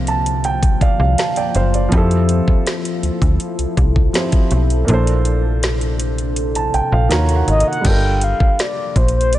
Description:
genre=contemporary R&B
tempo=81 BPM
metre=4/4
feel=straight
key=unclear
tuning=A4 = 440 Hz
part: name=warm grand piano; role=accompaniment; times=0.0-9.4 s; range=Bb2 to Bb5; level=-21 LUFS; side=right 3 dB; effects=none
part: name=deep dark ambient pad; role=sustained chords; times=0.0-9.4 s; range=C3 to A4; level=-24 LUFS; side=left 3 dB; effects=chorus, built-in reverb
part: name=slap-like FM bass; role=bass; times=0.0-9.4 s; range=F#1 to F2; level=-17 LUFS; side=equal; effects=none
part: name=smooth R&B drum kit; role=drums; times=0.1-9.4 s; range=crash cymbal, hi-hat, kick drum, snare drum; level=-18 LUFS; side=equal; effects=none
part: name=mellow horn-like synth lead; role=melody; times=7.5-9.4 s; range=C5 to G5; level=-19 LUFS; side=left 1 dB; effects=chorus
room=little or no reverb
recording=nothing above 10.4 kHz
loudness=-14 LUFS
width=side -14 dB against mid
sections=0.0-7.8 A section; 7.8-9.4 B section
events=grand piano fill 0.0-1.9, 6.7-7.8; kick muted 4.9-7.8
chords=0.0 C9sus4; 1.9 Fmaj7; 4.9 Bbmaj9; 7.1 Ebm9; 7.8 Gm7

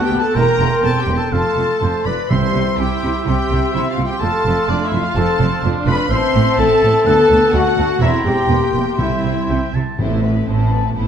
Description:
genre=cinematic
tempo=126 BPM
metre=4/4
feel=straight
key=C major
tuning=A4 = 440 Hz
part: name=rich studio violin section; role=melody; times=0.0-11.1 s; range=B4 to C6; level=-27 LUFS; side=left 3 dB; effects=none
part: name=bright clarinet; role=second line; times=0.0-9.7 s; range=D4 to C5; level=-26 LUFS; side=left 2 dB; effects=none
part: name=clear oboe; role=second line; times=0.0-10.0 s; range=C5 to Bb5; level=-26 LUFS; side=right 2 dB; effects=none
part: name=mellow small flute group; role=second line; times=0.0-11.1 s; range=E5 to C6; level=-26 LUFS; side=left 3 dB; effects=none
part: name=warm symphonic violin section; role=second line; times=0.0-11.1 s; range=B3 to C6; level=-28 LUFS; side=left 2 dB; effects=none
part: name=rich studio viola section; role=accompaniment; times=0.0-11.1 s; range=G3 to E4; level=-25 LUFS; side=right 2 dB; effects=none
part: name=warm French horn section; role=sustained chords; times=0.0-9.7 s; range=D4 to C5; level=-20 LUFS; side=left 3 dB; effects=none
part: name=warm trumpet section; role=stabs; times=0.0-9.7 s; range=D4 to C5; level=-25 LUFS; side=right 1 dB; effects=none
part: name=rich symphonic cello section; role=bass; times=0.1-11.1 s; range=D2 to C3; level=-22 LUFS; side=right 2 dB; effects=none
part: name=rich symphonic double bass section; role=bass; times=0.1-11.1 s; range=E1 to D2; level=-21 LUFS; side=right 3 dB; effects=none
part: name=timpani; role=percussion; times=2.3-3.0, 9.0-10.7 s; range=A2 to C3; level=-22 LUFS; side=right 1 dB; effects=none
room=moderate scoring stage reverb, RT60 1.5 s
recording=none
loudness=-14 LUFS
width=side -8 dB against mid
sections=0.0-10.0 A section; 10.0-11.1 B section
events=none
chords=0.4 C7/E; 1.3 F; 2.3 C; 4.2 F; 6.1 Am; 7.1 D; 8.0 C7/E; 9.0 C; 10.0 Amadd9

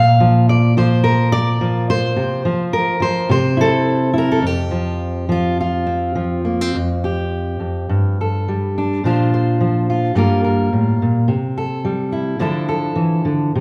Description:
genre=folk, solo fingerstyle acoustic guitar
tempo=106 BPM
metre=4/4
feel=rubato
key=F major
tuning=A4 = 440 Hz
part: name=fingerpicked steel-string acoustic guitar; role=solo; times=0.0-13.6 s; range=F2 to F5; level=-17 LUFS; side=equal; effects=none
room=wet large studio reverb, RT60 1.4 s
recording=band playing live in one room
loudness=-18 LUFS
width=mono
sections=0.0-6.8 A section; 6.8-13.6 B section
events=none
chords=0.0 Bb; 2.2 Csus4; 3.3 C; 4.4 F5; 6.8 Fsus2; 7.9 Gsus2; 9.0 Bbadd9; 10.2 Gm7; 11.3 C; 12.4 Dmadd9

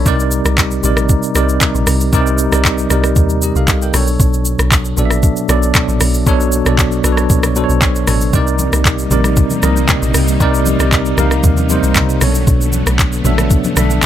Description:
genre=amapiano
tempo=116 BPM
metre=4/4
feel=straight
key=C dorian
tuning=A4 = 440 Hz
part: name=bell-like tine electric piano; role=accompaniment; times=0.0-14.1 s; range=B2 to G5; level=-16 LUFS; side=equal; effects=fast stereo tremolo
part: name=deep log drum bass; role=bass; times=0.0-14.0 s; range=A1 to Eb2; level=-16 LUFS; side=equal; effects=none
part: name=smooth R&B drum kit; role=drums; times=0.1-14.1 s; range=handclaps, hi-hat, kick drum, rim click, shaker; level=-15 LUFS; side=equal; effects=none
part: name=string machine, cellos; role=sustained chords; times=8.3-14.1 s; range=C3 to Eb4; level=-22 LUFS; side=equal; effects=ensemble chorus, sidechain pumping
part: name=congas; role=percussion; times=8.6-14.1 s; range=none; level=-23 LUFS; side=left 2 dB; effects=none
room=little or no reverb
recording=none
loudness=-11 LUFS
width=side -11 dB against mid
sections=0.0-14.1 A section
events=none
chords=0.1 Cm7; 3.9 Bm7; 8.3 Cm7; 12.2 Bm7

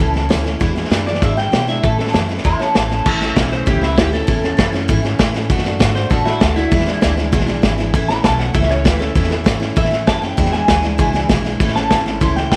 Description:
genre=rockabilly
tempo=197 BPM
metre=4/4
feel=straight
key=A major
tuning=A4 = 440 Hz
part: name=electric guitar through a small old amp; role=melody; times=0.0-12.6 s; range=E4 to C6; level=-23 LUFS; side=equal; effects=phaser, tape echo
part: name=picked steel-string acoustic guitar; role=accompaniment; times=0.0-12.6 s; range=E2 to F#4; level=-24 LUFS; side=equal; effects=none
part: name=upright bass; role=bass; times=0.0-12.6 s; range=G#1 to B2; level=-24 LUFS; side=equal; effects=none
part: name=vintage drum kit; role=drums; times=0.0-12.6 s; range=crash cymbal, hi-hat, kick drum, snare drum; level=-19 LUFS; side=equal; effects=none
room=light reverb, studio ambience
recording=none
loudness=-16 LUFS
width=mono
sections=0.0-3.1 A section; 3.1-12.6 B section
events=clean electric guitar solo 3.1-12.6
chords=0.0 A; 0.6 E7; 1.8 A; 5.5 D; 6.7 E7; 7.9 A; 10.4 E7; 11.6 A

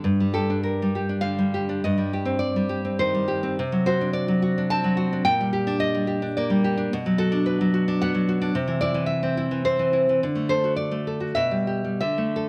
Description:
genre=romantic piece for solo classical guitar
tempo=85-113 BPM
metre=3/4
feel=rubato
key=G minor, G major from 6.9 s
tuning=A4 = 440 Hz
part: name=nylon-string guitar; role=solo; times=0.0-12.5 s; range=G2 to A5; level=-24 LUFS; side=equal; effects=none
room=moderate recital hall reverb, RT60 1.7 s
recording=none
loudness=-24 LUFS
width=mono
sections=0.1-12.5 A section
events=none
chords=0.1 Gm; 1.8 Cm/G; 3.6 D7/C; 5.3 Gm/Bb; 6.9 Bm; 8.5 C; 10.2 D; 11.4 G/B

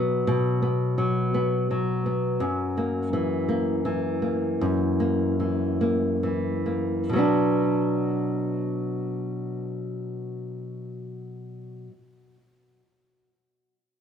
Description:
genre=pop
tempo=43-56 BPM (dotted quarters)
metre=6/8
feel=straight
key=B minor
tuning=A4 = 441 Hz
part: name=flamenco guitar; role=solo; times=0.0-12.0 s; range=F#2 to F#4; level=-24 LUFS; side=equal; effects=tape echo
room=wet small room reverb, RT60 0.6 s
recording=band playing live in one room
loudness=-23 LUFS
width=side -8 dB against mid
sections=0.0-7.1 A section; 7.1-12.7 B section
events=slowing down 2.4-7.1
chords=0.0 B5; 2.4 F#7; 7.1 Bm

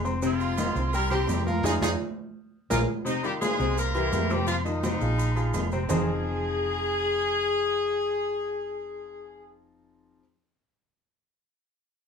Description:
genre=latin, salsa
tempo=169 BPM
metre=4/4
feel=straight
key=F minor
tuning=A4 = 437 Hz
part: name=warm grand piano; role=accompaniment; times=0.0-10.2 s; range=C3 to C6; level=-30 LUFS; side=left 3 dB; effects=none
part: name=hollow-body short-scale fingered electric bass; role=bass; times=0.0-10.2 s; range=F1 to F2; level=-30 LUFS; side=right 1 dB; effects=none
part: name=maracas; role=percussion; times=0.1-6.0 s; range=none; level=-42 LUFS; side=right 6 dB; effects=none
part: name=bright horn section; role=melody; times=0.2-2.8 s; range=Ab3 to Bb4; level=-29 LUFS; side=right 1 dB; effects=none
part: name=congas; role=percussion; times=0.2-6.0 s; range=none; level=-32 LUFS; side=right 1 dB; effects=none
part: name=agogo bells and timbales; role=percussion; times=0.4-6.0 s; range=none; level=-35 LUFS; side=right 3 dB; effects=none
part: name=bright horn section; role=melody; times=3.1-9.5 s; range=F3 to Eb5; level=-27 LUFS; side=left 2 dB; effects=none
room=wet studio ambience, RT60 0.5 s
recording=heard from further back in the room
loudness=-24 LUFS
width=side -6 dB against mid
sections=0.0-3.1 A section; 3.1-5.9 B section; 5.9-8.7 C section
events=band accent 1.6-3.1; drum fill 2.5-3.1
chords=0.2 Fm7; 0.9 C7; 1.6 Fm7; 2.3 Bb5; 3.1 Fm7; 3.8 C7; 4.5 Fm7; 5.2 Bb5; 5.9 Fm7

